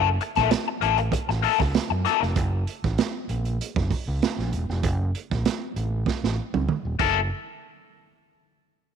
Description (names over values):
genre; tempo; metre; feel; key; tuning
funk; 97 BPM; 4/4; straight; unclear; A4 = 439 Hz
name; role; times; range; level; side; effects
crunchy overdriven guitar; accompaniment; 0.0-2.3, 7.0-7.2 s; A#3 to A4; -24 LUFS; left 13 dB; wah
overdriven fingered electric bass; bass; 0.0-7.3 s; D#1 to F#2; -26 LUFS; right 1 dB; none
crunchy breakbeat drum kit; drums; 0.2-7.1 s; crash cymbal, hi-hat, kick drum, snare drum, toms; -26 LUFS; right 6 dB; none
room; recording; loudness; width
light reverb, small room ambience; 1960s-style stereo with parts hard left and right; -22 LUFS; side -7 dB against mid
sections
0.0-7.3 A section; 7.3-8.9 B section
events
break 2.4-7.3; drum fill 6.1-7.3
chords
0.0 F#7#9; 7.3 N.C.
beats
0.51 1.13 1.74 | 2.36 2.98 3.59 4.21 | 4.83 5.45 6.06 6.68